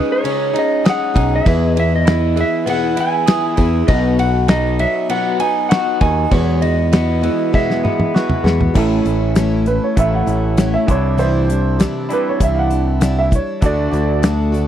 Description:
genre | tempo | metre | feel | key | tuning
folk rock and heartland rock | 99 BPM | 4/4 | straight | E major | A4 = 440 Hz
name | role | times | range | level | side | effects
electric guitar through a small old amp | melody | 0.0-8.4 s | B4 to G#5 | -20 LUFS | right 1 dB | spring reverb
dark grand piano | accompaniment | 0.0-14.7 s | B3 to C6 | -30 LUFS | right 6 dB | none
picked plugged-in twelve-string acoustic guitar | accompaniment | 0.0-14.7 s | E2 to G#4 | -22 LUFS | left 5 dB | none
electric guitar through a small old amp | riff | 0.0-14.7 s | E2 to G#4 | -21 LUFS | right 1 dB | none
damped 70s drum kit | drums | 0.2-14.7 s | crash cymbal, hi-hat, kick drum, ride cymbal, snare drum, toms | -18 LUFS | equal | none
picked electric bass | bass | 1.2-14.7 s | A1 to E2 | -17 LUFS | equal | none
warm upright piano | second line | 9.7-14.2 s | B4 to F#5 | -20 LUFS | right 3 dB | none
room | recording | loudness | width
little or no reverb | dry, close 1970s-style studio recording | -13 LUFS | side -10 dB against mid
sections
0.0-8.8 A section; 8.8-14.7 B section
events
drum fill 7.5-8.8; upright piano solo 8.8-14.7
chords
0.0 C#sus2; 1.5 E; 3.9 B; 6.3 Eadd9; 8.8 A; 10.9 Cadd9; 13.6 D

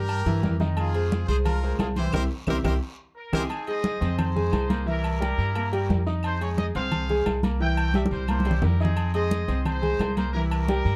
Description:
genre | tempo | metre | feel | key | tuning
latin, salsa | 176 BPM | 4/4 | straight | F minor | A4 = 440 Hz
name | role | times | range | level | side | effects
bright horn section | melody | 0.0-3.4 s | F4 to C5 | -35 LUFS | equal | none
bright grand piano | accompaniment | 0.0-11.0 s | Eb3 to Eb6 | -31 LUFS | equal | none
upright bass | bass | 0.0-11.0 s | C2 to G2 | -28 LUFS | equal | none
agogo bells and timbales | percussion | 0.1-10.9 s | none | -38 LUFS | equal | none
claves | percussion | 0.1-10.7 s | none | -47 LUFS | equal | none
congas | percussion | 0.1-11.0 s | none | -31 LUFS | equal | none
guiro | percussion | 0.1-11.0 s | none | -50 LUFS | equal | none
bright trumpet section | melody | 3.2-11.0 s | C4 to G5 | -34 LUFS | equal | none
room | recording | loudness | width
light reverb | dark, warm production | -25 LUFS | mono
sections
0.0-3.5 A section; 3.5-11.0 B section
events
drum fill 2.1-3.5, 7.9-9.0; band accent 2.1-3.5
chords
0.0 C7 (rootless); 0.8 Fm7; 2.1 C7; 3.5 Fm7; 4.9 C7; 6.2 Fm7; 7.6 C7; 9.0 Fm7; 10.3 C7

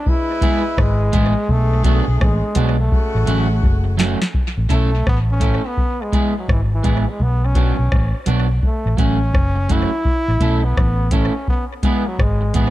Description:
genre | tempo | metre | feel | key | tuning
roots reggae | 84 BPM | 4/4 | swing 62% on 16ths | A major | A4 = 440 Hz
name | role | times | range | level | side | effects
bright trombone | melody | 0.0-12.7 s | E3 to E4 | -23 LUFS | equal | tape echo
warm horn section | second line | 0.1-4.0 s | C#3 to B4 | -28 LUFS | left 4 dB | tape echo
soft vintage rhythm box | drums | 0.1-12.7 s | hi-hat, kick drum, rim click, snare drum | -19 LUFS | equal | none
electric guitar at the edge of break-up | accompaniment | 0.4-12.7 s | F#3 to A4 | -24 LUFS | right 3 dB | tape echo
vintage muted fingered electric bass | bass | 0.8-12.7 s | F#1 to B1 | -17 LUFS | equal | none
room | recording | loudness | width
light reverb | dark, warm production | -15 LUFS | side -15 dB against mid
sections
0.0-4.3 A section; 4.3-12.7 B section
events
drum fill 2.9-4.3; trombone solo 4.3-12.7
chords
0.1 E; 1.5 Bm; 2.9 F#m; 4.3 A; 5.8 E; 7.2 Bm; 8.6 F#m; 10.1 A; 11.5 E

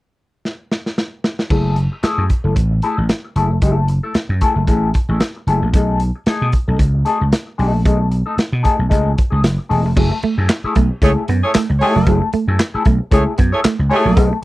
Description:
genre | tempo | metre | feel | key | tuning
funk | 114 BPM | 4/4 | swing 56% on 16ths | F# dorian | A4 = 440 Hz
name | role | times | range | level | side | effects
crunchy breakbeat drum kit | drums | 0.5-14.3 s | crash cymbal, handclaps, hi-hat, kick drum, snare drum | -16 LUFS | equal | none
mellow electric guitar | accompaniment | 1.5-14.4 s | A3 to A4 | -19 LUFS | left 3 dB | wah
vintage slap bass | bass | 1.5-14.3 s | E1 to B2 | -16 LUFS | equal | none
semi-hollow electric guitar | riff | 10.0-14.4 s | F#3 to B3 | -19 LUFS | right 6 dB | wide subtle chorus
clear horn section | second line | 11.0-14.3 s | A3 to C#5 | -18 LUFS | right 2 dB | none
room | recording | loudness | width
little or no reverb | dry, close 1970s-style studio recording | -14 LUFS | side -18 dB against mid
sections
0.0-1.5 A section; 1.5-10.0 B section; 10.0-14.4 C section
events
drum fill 0.4-1.5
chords
0.0 N.C.; 1.5 F#m9; 5.7 B13; 10.0 F#m9

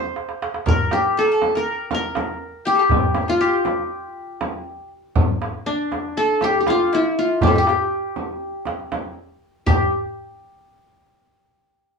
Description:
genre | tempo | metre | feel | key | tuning
Turkish makam ensemble | 240 BPM (eighths) | 9/8 | straight | G makam huseyni | A4 = 440 Hz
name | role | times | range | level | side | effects
qanun | melody | 0.0-9.9 s | D4 to C5 | -20 LUFS | left 2 dB | none
darbuka | percussion | 0.2-9.9 s | none | -24 LUFS | left 1 dB | none
mandolin | second line | 0.7-9.9 s | D4 to Bb4 | -25 LUFS | left 2 dB | none
frame drum | percussion | 0.7-9.9 s | none | -24 LUFS | right 3 dB | none
room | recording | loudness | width
wet studio reverb, RT60 0.6 s | band playing live in one room, small room ambience | -18 LUFS | side -5 dB against mid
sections
0.0-9.7 A section; 9.7-11.9 B section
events
drum fill 0.2-0.7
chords
none

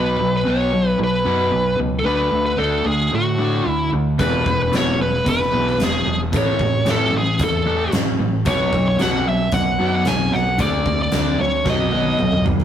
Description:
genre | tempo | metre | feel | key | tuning
classic rock | 112 BPM | 4/4 | straight | unclear | A4 = 440 Hz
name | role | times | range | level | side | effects
bluesy overdriven lead guitar | melody | 0.0-12.4 s | F#4 to G#5 | -20 LUFS | equal | distortion
crunchy overdriven guitar | riff | 0.0-12.6 s | E2 to D4 | -24 LUFS | right 3 dB | none
overdriven semi-hollow guitar | riff | 0.0-12.6 s | E2 to D4 | -25 LUFS | left 5 dB | none
fuzz fingered electric bass | bass | 0.0-12.6 s | E1 to A2 | -24 LUFS | equal | overdrive
huge arena drum kit | drums | 4.2-12.6 s | hi-hat, kick drum, snare drum, toms | -22 LUFS | equal | none
room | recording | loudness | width
moderate stone room reverb, RT60 1.4 s | rough rehearsal-room recording, tube saturation | -16 LUFS | side -9 dB against mid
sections
0.0-12.6 A section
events
drum fill 11.7-12.6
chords
0.0 Bsus2; 2.1 D; 4.2 E5; 6.3 A; 8.5 B5; 10.6 D5; 11.7 B

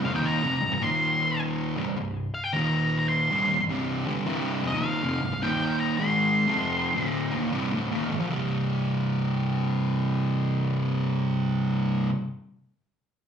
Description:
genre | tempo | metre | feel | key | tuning
metal | 104 BPM | 4/4 | swing 65% on 8ths | C minor | A4 = 440 Hz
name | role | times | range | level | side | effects
fuzz guitar | riff | 0.0-12.1 s | C2 to Ab3 | -25 LUFS | equal | distortion, slapback echo
octave-fuzz lead guitar | melody | 0.1-7.7 s | Eb5 to C6 | -27 LUFS | equal | distortion, slapback echo, digital delay
room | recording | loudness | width
light reverb | live gig heard through the venue's PA, club reverb, nothing above 10.7 kHz | -24 LUFS | side -8 dB against mid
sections
0.0-8.3 A section; 8.3-10.6 B section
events
none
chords
0.0 Cm; 0.8 Eb5; 1.7 C5; 2.5 Eb5; 3.3 Cm; 5.4 Eb5; 6.0 Cm; 8.3 C5

